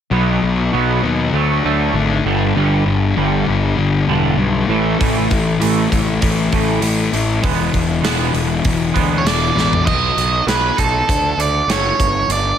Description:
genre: quiet-loud alternative rock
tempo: 99 BPM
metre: 4/4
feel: straight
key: unclear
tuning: A4 = 438 Hz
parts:
  - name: twangy electric guitar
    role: arpeggios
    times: 0.1-12.6 s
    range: G2 to D#4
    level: -22 LUFS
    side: right 9 dB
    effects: analog chorus, tape echo
  - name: thick fuzz guitar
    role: riff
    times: 0.1-9.8 s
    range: E2 to D4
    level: -18 LUFS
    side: left 6 dB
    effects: distortion
  - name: fuzz picked electric bass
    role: bass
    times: 0.1-12.5 s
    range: E1 to D#2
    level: -20 LUFS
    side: equal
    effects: overdrive
  - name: big rock drum kit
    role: drums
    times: 5.0-12.4 s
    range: crash cymbal, hi-hat, kick drum, snare drum, toms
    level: -20 LUFS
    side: right 1 dB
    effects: none
  - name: octave-fuzz lead guitar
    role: melody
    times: 9.2-12.6 s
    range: A4 to D#5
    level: -17 LUFS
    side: right 3 dB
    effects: distortion
room: light reverb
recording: none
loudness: -14 LUFS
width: side -9 dB against mid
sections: 0.1-9.9 A section; 9.9-12.6 B section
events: drum fill 9.6-9.9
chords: 0.1 B; 1.3 D; 2.3 G5; 4.7 A5; 7.4 E; 9.9 B; 11.1 D; 12.0 G5

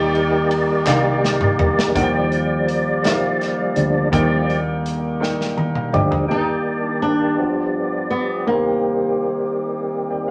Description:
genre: slow gospel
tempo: 55 BPM (dotted quarters)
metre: 6/8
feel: straight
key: Eb major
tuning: A4 = 445 Hz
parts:
  - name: warm upright piano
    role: accompaniment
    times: 0.0-10.3 s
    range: G2 to Eb6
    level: -26 LUFS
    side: equal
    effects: none
  - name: percussive tonewheel organ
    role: sustained chords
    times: 0.0-10.3 s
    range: D3 to D5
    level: -23 LUFS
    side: equal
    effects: slow rotary speaker, overdrive, chorus vibrato
  - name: fingered electric bass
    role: bass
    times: 0.0-6.3 s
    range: C2 to Eb2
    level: -27 LUFS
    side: equal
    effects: none
  - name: modern studio drum kit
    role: drums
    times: 0.1-6.3 s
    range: hi-hat, kick drum, ride cymbal, snare drum, toms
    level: -26 LUFS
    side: equal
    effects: none
  - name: group handclap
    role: percussion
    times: 0.9-1.2 s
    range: none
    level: -28 LUFS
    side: equal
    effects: none
  - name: warm French horn section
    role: sustained chords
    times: 2.0-10.3 s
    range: Eb3 to D5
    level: -32 LUFS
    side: equal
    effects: none
  - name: flamenco guitar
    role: melody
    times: 6.3-9.2 s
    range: Bb3 to Eb4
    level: -24 LUFS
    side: equal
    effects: none
room: wet studio reverb, RT60 0.8 s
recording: none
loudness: -19 LUFS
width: mono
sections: 0.0-2.0 A section; 2.0-6.3 B section; 6.3-10.3 C section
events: drum fill 0.9-2.0, 5.2-6.3; tonewheel organ solo 2.0-6.3; upright piano fill 5.2-6.3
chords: 0.0 Ebmaj7; 7.4 G7; 8.5 Cm7

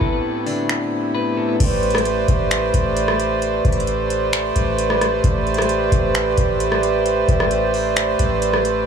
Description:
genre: hip hop, atmospheric cloud-rap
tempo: 132 BPM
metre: 4/4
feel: half-time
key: A minor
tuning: A4 = 440 Hz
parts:
  - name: pedal harmonium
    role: sustained chords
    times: 0.0-8.9 s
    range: A2 to D5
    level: -19 LUFS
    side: right 2 dB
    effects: sidechain pumping
  - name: electric guitar at the edge of break-up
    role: arpeggios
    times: 0.0-1.6 s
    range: D4 to B4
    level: -29 LUFS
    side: left 8 dB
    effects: low-pass filter, digital delay
  - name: booming analog drum machine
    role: drums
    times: 0.0-8.8 s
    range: crash cymbal, finger snaps, hi-hat, kick drum, rim click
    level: -22 LUFS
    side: left 1 dB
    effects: overdrive
  - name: soft 808-style bass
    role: bass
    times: 1.6-8.8 s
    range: A1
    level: -24 LUFS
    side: left 1 dB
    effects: none
room: moderate shimmer reverb, RT60 8.5 s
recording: small room ambience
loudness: -16 LUFS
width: side -7 dB against mid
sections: 0.0-1.6 A section; 1.6-8.9 B section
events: none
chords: 0.0 Am11

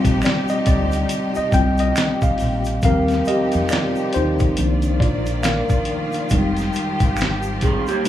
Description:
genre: R&B, neo-soul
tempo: 69 BPM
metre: 4/4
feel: swing 60% on 16ths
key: Eb major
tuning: A4 = 438 Hz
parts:
  - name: tine electric piano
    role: accompaniment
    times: 0.0-8.1 s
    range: Eb3 to G5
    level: -20 LUFS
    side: left 1 dB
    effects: medium stereo tremolo
  - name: clear studio string section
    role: sustained chords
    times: 0.0-8.1 s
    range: Cb3 to D5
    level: -26 LUFS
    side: equal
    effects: none
  - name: dusty soul sampler-style drum kit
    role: drums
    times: 0.0-8.1 s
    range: hi-hat, kick drum, snare drum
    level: -21 LUFS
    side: equal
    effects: none
  - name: tube shaker and finger snaps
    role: percussion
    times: 0.0-8.1 s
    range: none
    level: -34 LUFS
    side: right 3 dB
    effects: none
  - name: deep dub fingered electric bass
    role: bass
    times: 0.1-7.8 s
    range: F1 to F2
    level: -22 LUFS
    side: equal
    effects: none
  - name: electric guitar through a small old amp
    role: second line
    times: 7.6-8.1 s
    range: Bb3 to Ab4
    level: -20 LUFS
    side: right 4 dB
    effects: wide subtle chorus
room: light reverb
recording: small room reverb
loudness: -17 LUFS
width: side -12 dB against mid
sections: 0.0-2.8 A section; 2.8-8.1 B section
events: tine electric piano solo 0.0-2.8, 2.8-8.1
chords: 0.0 Eb69; 4.6 Cm11; 6.3 Fm9

